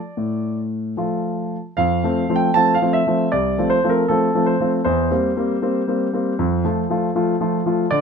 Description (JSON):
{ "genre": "classical-period piano sonatina", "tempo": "78 BPM", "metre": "4/4", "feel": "straight", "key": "F major", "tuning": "A4 = 440 Hz", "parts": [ { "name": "clear concert grand piano", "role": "solo", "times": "0.0-8.0 s", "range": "C2 to A5", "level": "-17 LUFS", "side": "equal", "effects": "none" } ], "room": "little or no reverb", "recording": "close, detailed microphones", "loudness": "-17 LUFS", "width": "side -6 dB against mid", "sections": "0.0-1.8 A section; 1.8-8.0 B section", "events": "none", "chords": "0.0 Dm; 1.8 F; 4.9 C7/E; 6.4 F" }